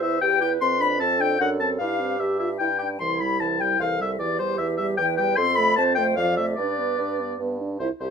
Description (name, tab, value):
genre	quick classical-period movement for wind quintet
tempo	151 BPM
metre	3/4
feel	straight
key	C major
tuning	A4 = 440 Hz
part	bright silver concert flute	melody	0.0-8.1 s	C5 to C6	-30 LUFS	left 8 dB	none
part	clear oboe	second line	0.0-8.1 s	C5 to C6	-24 LUFS	left 4 dB	none
part	mellow French horn	accompaniment	0.0-8.1 s	E3 to G4	-30 LUFS	right 1 dB	none
part	warm clarinet	accompaniment	0.0-8.1 s	E4 to D5	-29 LUFS	right 9 dB	none
part	warm bassoon	bass	0.0-8.1 s	C2 to G2	-28 LUFS	right 3 dB	none
room	light reverb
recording	none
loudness	-21 LUFS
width	side -6 dB against mid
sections	0.0-7.8 A section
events	none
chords	0.0 C/E; 0.6 Dm7/F; 1.4 D7/F#; 1.8 C/G; 2.6 G5; 3.0 C; 4.2 Em7; 5.4 F; 6.2 Dm/F; 6.6 G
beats	0.22 | 0.61 1.01 1.40 | 1.80 2.20 2.60 | 3.00 3.40 3.80 | 4.19 4.59 4.98 | 5.37 5.77 6.17 | 6.58 6.99 7.40 | 7.81